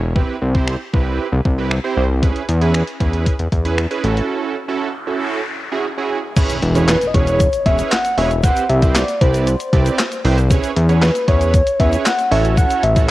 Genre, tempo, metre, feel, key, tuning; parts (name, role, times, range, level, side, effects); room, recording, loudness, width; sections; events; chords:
dance-pop; 116 BPM; 4/4; straight; E major; A4 = 439 Hz
fat analog bass; bass; 0.0-13.1 s; E1 to E2; -16 LUFS; equal; sidechain pumping
big bright polysynth; accompaniment; 0.2-13.1 s; C4 to D5; -22 LUFS; right 5 dB; chorus, sidechain pumping, cassette tape
crisp 8-bit digital drum machine; drums; 0.2-13.1 s; crash cymbal, finger snaps, handclaps, hi-hat, kick drum, snare drum; -18 LUFS; equal; cassette tape
noise sweep and impact; sound effects; 4.6-8.4 s; -29 LUFS; left 1 dB
egg shaker; percussion; 6.4-13.1 s; -39 LUFS; left 9 dB
soft struck synth lead; melody; 6.9-13.1 s; B4 to F#5; -19 LUFS; left 1 dB; chorus, cassette tape, analog delay
light reverb, digital ambience; home recording on cassette; -14 LUFS; side -16 dB against mid
0.0-6.4 A section; 6.4-13.1 B section
break 4.3-6.4; noise sweep 4.6-6.4; impact 6.4-8.4
0.2 Cmaj7; 2.2 E6; 4.0 A6; 6.4 E6; 8.4 Cmaj7; 10.5 E6; 12.3 A6